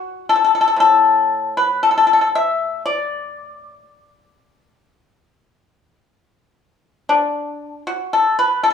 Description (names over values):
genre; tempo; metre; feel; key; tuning
chinese traditional, Chinese solo plucked strings; 58 BPM; 4/4; rubato; D gong mode; A4 = 439 Hz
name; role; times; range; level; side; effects
pipa; solo; 0.0-8.7 s; A2 to E5; -15 LUFS; left 3 dB; none
room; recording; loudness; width
moderate stone room reverb, RT60 1.1 s; band playing live in one room, studio reverb; -14 LUFS; side -7 dB against mid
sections
0.0-7.1 A section; 7.1-8.7 B section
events
none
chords
none